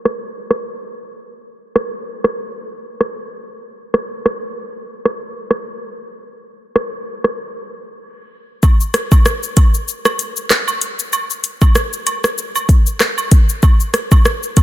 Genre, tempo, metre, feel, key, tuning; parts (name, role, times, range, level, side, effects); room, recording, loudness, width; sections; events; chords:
dancehall; 96 BPM; 4/4; swing 56% on 16ths
afro-pop drum kit; drums; 0.1-14.6 s; handclaps, hi-hat, kick drum, rim click, shaker; -14 LUFS; equal; soft clipping on snare
woodblock and cabasa; percussion; 8.6-14.6 s; -24 LUFS; right 5 dB
little or no reverb; dense, heavily limited modern master, low-pass filter; -14 LUFS; side -14 dB against mid
0.0-8.6 A section; 8.6-14.6 B section
filter sweep 0.0-8.6; silent gap 8.0-8.6